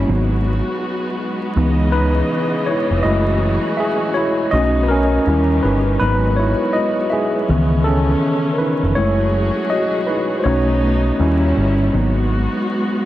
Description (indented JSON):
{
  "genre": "hip hop",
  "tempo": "81 BPM",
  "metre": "4/4",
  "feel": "swing 61% on 16ths",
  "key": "F# dorian",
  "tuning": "A4 = 441 Hz",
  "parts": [
    { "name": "tine electric piano", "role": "accompaniment", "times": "0.0-13.1 s", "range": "D#3 to E5", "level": "-17 LUFS", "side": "equal", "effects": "medium stereo tremolo, cassette tape, low-pass filter" },
    { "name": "rich studio string section", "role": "sustained chords", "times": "0.0-13.1 s", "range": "A#2 to D#5", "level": "-23 LUFS", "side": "equal", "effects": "low-pass filter" },
    { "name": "deep dub picked electric bass", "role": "bass", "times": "0.0-12.5 s", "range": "E#1 to D#2", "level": "-18 LUFS", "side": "equal", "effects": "none" }
  ],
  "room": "moderate huge ambient reverb, RT60 8.9 s",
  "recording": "dreamy mix soaked in reverb, vinyl crackle",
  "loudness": "-15 LUFS",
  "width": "side -14 dB against mid",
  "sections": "0.0-13.1 A section",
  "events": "tine electric piano solo 0.0-13.1",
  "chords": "0.1 G#m7; 1.6 C#m9; 3.0 F#m9; 4.5 B7; 5.3 D#7b9; 6.0 G#m7; 7.5 C#m9; 9.0 F#m9; 10.5 B7; 11.2 D#7b9; 11.9 G#m7"
}